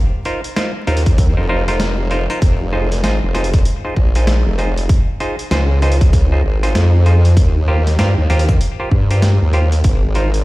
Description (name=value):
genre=glitch hop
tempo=97 BPM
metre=4/4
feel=swing 61% on 16ths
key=F minor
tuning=A4 = 439 Hz
part: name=clav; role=stabs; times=0.3-10.3 s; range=Eb4 to C5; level=-22 LUFS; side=equal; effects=sidechain pumping, low-pass filter, ping-pong delay
part: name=boom bap sampler-style drum kit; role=drums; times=0.3-10.4 s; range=hi-hat, snare drum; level=-25 LUFS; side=equal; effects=overdrive
part: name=formant-sweep wobble bass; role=bass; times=0.9-10.4 s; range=F1 to G2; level=-14 LUFS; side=equal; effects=chorus, overdrive
part: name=electronic kick drum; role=drums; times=1.1-10.0 s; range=none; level=-14 LUFS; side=equal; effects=none
room=little or no reverb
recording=played on a big sound system in a bare room, large studio reverb, vinyl crackle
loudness=-12 LUFS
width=side -19 dB against mid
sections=0.0-10.4 A section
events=none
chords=0.0 F7sus4; 2.4 Fm7; 4.9 Dbmaj7; 7.4 Eb69; 9.8 Ab6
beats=0.56 1.18 1.80 | 2.42 3.04 3.66 4.28 | 4.89 5.51 6.13 6.75 | 7.37 7.99 8.61 9.22 | 9.84